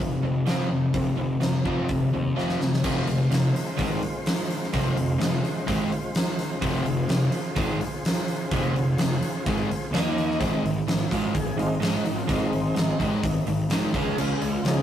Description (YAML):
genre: classic rock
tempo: 127 BPM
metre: 4/4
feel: straight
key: F minor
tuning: A4 = 444 Hz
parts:
  - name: overdriven electric guitar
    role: riff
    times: 0.0-14.8 s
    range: F2 to F4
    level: -28 LUFS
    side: right 4 dB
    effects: none
  - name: sludgy distorted guitar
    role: riff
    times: 0.0-14.8 s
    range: F2 to Eb4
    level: -27 LUFS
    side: left 4 dB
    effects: overdrive
  - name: fuzz picked electric bass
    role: bass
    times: 0.0-14.8 s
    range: F1 to Eb2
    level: -32 LUFS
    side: equal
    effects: overdrive
  - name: huge arena drum kit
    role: drums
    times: 0.0-14.8 s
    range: crash cymbal, hi-hat, kick drum, snare drum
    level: -27 LUFS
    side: right 1 dB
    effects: none
  - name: tonewheel organ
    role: sustained chords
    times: 2.8-14.8 s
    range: F3 to Eb5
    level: -32 LUFS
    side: equal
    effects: slow rotary speaker, overdrive
room: moderate stone room reverb, RT60 1.1 s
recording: rough rehearsal-room recording, warm saturation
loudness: -22 LUFS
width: side -10 dB against mid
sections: 0.0-2.8 A section; 2.8-10.4 B section; 10.4-14.8 C section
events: drum fill 2.4-2.8; tonewheel organ solo 10.4-14.8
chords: 0.0 F5; 2.8 Fm; 9.9 Eb5; 10.4 Ab; 13.9 Dbadd9